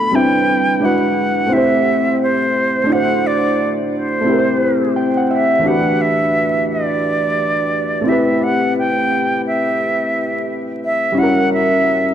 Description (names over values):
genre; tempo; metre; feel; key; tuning
hip hop; 87 BPM; 4/4; swing 62% on 16ths; A dorian; A4 = 440 Hz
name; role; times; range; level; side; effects
silver concert flute; melody; 0.0-12.1 s; C5 to B5; -17 LUFS; equal; diffuse ambient delay
warbly lo-fi synth keys; accompaniment; 0.0-12.1 s; E3 to G5; -16 LUFS; equal; chorus, cassette tape
room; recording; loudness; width
wet plate reverb, RT60 2.7 s; dreamy mix soaked in reverb, vinyl crackle; -14 LUFS; side -9 dB against mid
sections
0.0-5.7 A section; 5.7-12.1 B section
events
synth keys fill 4.6-5.7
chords
0.1 Cmaj7; 0.8 E7; 1.5 Am7; 2.9 D7; 4.3 Am7; 5.7 Em11; 8.1 Am9; 11.2 F#7b9